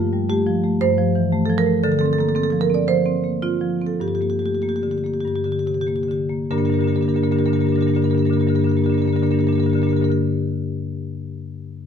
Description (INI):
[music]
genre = classical, contemporary piece for solo marimba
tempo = 93-120 BPM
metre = 4/4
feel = rubato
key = G minor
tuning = A4 = 440 Hz
[part]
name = marimba with medium mallets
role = solo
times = 0.0-10.2 s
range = G2 to D5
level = -18 LUFS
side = equal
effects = none
[sound]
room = light reverb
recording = close, detailed microphones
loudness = -18 LUFS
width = side -7 dB against mid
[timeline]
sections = 0.0-6.5 A section; 6.5-11.6 B section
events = slowing down 0.8-6.5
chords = 0.0 Fadd9/G; 1.8 Dm7; 4.0 Gm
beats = 0.30 0.82 1.33 | 1.83 2.35 2.88 3.43 | 4.02 4.62 5.24 5.87 | 6.50 7.14 7.77 8.41 | 9.04 9.68